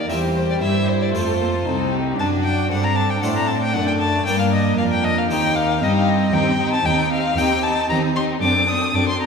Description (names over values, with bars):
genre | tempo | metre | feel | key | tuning
classical, baroque-style concerto movement with solo episodes | 115 BPM | 4/4 | straight | unclear | A4 = 441 Hz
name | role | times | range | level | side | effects
rich chamber violin section | melody | 0.0-9.3 s | F#4 to D5 | -29 LUFS | left 7 dB | none
warm violin | melody | 0.0-9.3 s | C5 to Eb6 | -22 LUFS | left 3 dB | none
rich chamber violin section | second line | 0.0-9.3 s | C4 to F4 | -26 LUFS | left 2 dB | none
harpsichord | accompaniment | 0.0-9.3 s | C2 to C5 | -25 LUFS | equal | none
warm studio viola section | accompaniment | 0.0-9.3 s | G3 to D4 | -25 LUFS | right 2 dB | none
warm chamber cello section | bass | 0.0-9.3 s | C2 to A2 | -23 LUFS | right 2 dB | none
room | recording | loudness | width
wet scoring stage reverb, RT60 1.6 s | recorded in a church or concert hall | -17 LUFS | side -5 dB against mid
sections
0.0-9.3 A section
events
none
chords
0.1 C7/E; 1.1 F; 2.2 D7/F#; 4.3 Gm; 5.3 Cm/Eb; 8.4 D7/F#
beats
| 0.10 0.62 1.15 1.67 | 2.19 2.71 3.23 3.75 | 4.26 4.78 5.30 5.82 | 6.34 6.86 7.38 7.90 | 8.42 8.94